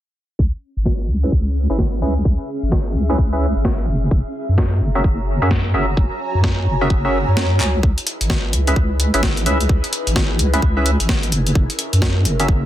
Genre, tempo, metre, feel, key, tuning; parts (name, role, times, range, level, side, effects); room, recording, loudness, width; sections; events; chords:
UK garage, two-step garage; 129 BPM; 4/4; swing 62% on 16ths; C# minor; A4 = 440 Hz
deep soft wobble bass; bass; 0.4-12.7 s; F#1 to F#2; -18 LUFS; equal; chorus
electronic kick drum; drums; 0.4-12.6 s; -18 LUFS; equal
granular cloud pad; texture; 1.1-12.7 s; C#4 to E6; -28 LUFS; equal; built-in reverb, sidechain pumping
breakbeat sampler-style drum kit; drums; 0.9-12.5 s; handclaps, hi-hat, snare drum; -23 LUFS; equal
percussive organ stab; stabs; 1.2-12.5 s; C#4 to E5; -22 LUFS; right 1 dB; analog chorus, dub echo
swell; sound effects; 7.2-7.8 s; -29 LUFS; right 3 dB
airy breathy pad; sustained chords; 7.8-12.7 s; C#4 to B4; -29 LUFS; left 1 dB; chorus, phaser, sidechain pumping
little or no reverb; dense, heavily limited modern master, low-pass filter; -16 LUFS; side -13 dB against mid
0.4-7.8 A section; 7.8-12.7 B section
filter sweep on wobble bass 0.4-7.8; filter sweep on synth stab 0.4-7.8; filter sweep 0.4-7.8; swell 7.2-7.8; kick drops out 7.4-7.8; drum fill 7.6
0.4 C#m7; 3.9 F#9; 7.6 C#m; 7.8 C#m7; 11.3 F#9